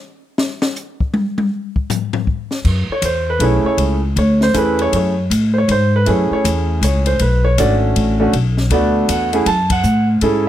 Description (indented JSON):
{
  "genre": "jazz piano trio",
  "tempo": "158 BPM",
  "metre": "3/4",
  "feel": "swing 64% on 8ths",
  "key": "F# minor",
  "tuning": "A4 = 437 Hz",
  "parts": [
    { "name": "open jazz drum kit", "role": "drums", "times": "0.4-10.3 s", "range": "crash cymbal, hi-hat, kick drum, ride cymbal, snare drum, toms", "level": "-22 LUFS", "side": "left 3 dB", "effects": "none" },
    { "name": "upright bass", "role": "bass", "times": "2.6-10.5 s", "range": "G#1 to A2", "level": "-16 LUFS", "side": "equal", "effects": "none" },
    { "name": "clear concert grand piano", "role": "melody", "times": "2.9-10.5 s", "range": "A3 to A5", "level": "-16 LUFS", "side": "right 1 dB", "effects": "none" }
  ],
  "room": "little or no reverb",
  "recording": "none",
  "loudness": "-14 LUFS",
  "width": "side -12 dB against mid",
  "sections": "0.0-2.6 A section; 2.6-10.5 B section",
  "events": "drum solo 0.0-2.6; band accent 9.7",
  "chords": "0.0 N.C.; 2.6 F#m7; 7.2 Bm7; 9.5 F#m7"
}